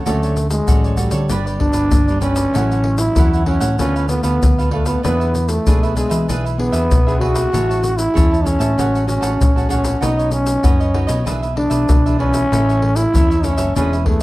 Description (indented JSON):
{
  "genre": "samba and choro",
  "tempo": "96 BPM",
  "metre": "4/4",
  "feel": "straight",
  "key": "A major",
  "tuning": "A4 = 440 Hz",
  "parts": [
    { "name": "cavaquinho", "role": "accompaniment", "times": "0.0-14.1 s", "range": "D4 to A5", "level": "-26 LUFS", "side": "right 4 dB", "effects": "none" },
    { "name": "nylon-string guitar", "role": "accompaniment", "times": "0.0-14.2 s", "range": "G2 to G#4", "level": "-26 LUFS", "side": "left 1 dB", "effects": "none" },
    { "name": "growling trombone", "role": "melody", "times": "0.1-14.2 s", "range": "G3 to F#4", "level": "-19 LUFS", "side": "equal", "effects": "slapback echo" },
    { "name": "hollow-body short-scale fingered electric bass", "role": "bass", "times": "0.1-14.2 s", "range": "E1 to E3", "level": "-20 LUFS", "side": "equal", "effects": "none" },
    { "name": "tube shaker, surdo and pandeiro", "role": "percussion", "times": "0.1-14.2 s", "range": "none", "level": "-18 LUFS", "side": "left 1 dB", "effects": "none" }
  ],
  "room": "light reverb",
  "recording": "dark, warm production",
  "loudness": "-14 LUFS",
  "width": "side -18 dB against mid",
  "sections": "0.0-14.2 A section",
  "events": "none",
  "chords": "0.1 Dmaj7; 1.3 G; 2.6 A6; 3.8 Dm6; 5.0 E7; 7.5 Amaj7; 8.8 F#madd9/A; 10.0 Badd9; 11.3 E7/B; 12.5 A",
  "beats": "| 0.07 0.69 1.31 1.93 | 2.56 3.18 3.80 4.42 | 5.04 5.67 6.29 6.91 | 7.54 8.16 8.78 9.40 | 10.03 10.65 11.27 11.90 | 12.52 13.14 13.77"
}